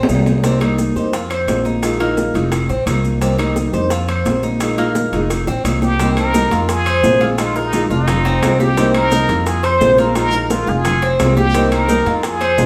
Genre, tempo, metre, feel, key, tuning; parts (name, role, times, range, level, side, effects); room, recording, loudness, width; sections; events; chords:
latin, Cuban son and guajira; 173 BPM; 4/4; straight; C minor; A4 = 440 Hz
Cuban tres; arpeggios; 0.0-12.7 s; Bb3 to C5; -22 LUFS; equal
upright bass; bass; 0.0-12.7 s; F1 to F2; -22 LUFS; equal
timbales; percussion; 0.0-12.7 s; -28 LUFS; equal
nylon-string guitar; accompaniment; 0.1-12.7 s; C3 to G4; -22 LUFS; equal
bongos; percussion; 0.1-12.7 s; -31 LUFS; equal
claves; percussion; 0.1-12.6 s; -33 LUFS; equal
congas; percussion; 0.1-12.7 s; -27 LUFS; equal
maracas; percussion; 0.1-12.7 s; -36 LUFS; equal
trumpet with plunger mute; melody; 5.8-12.7 s; Eb4 to C5; -22 LUFS; equal
wet large studio reverb, RT60 1.2 s; band playing live in one room; -16 LUFS; mono
0.0-6.0 A section; 6.0-12.7 B section
drum fill 0.0-0.4, 5.0-6.0
0.4 Cm7; 1.1 Fm7; 1.8 Bb7sus4; 2.5 Fm7; 3.2 Cm7; 3.9 Fm7; 4.6 Bb7sus4; 5.3 Fm7; 6.0 Cm7; 6.7 Fm7; 7.4 Bb7sus4; 8.1 Fm7; 8.8 Cm7; 9.5 Fm7; 10.2 Bb7sus4; 10.8 Fm7; 11.5 Cm7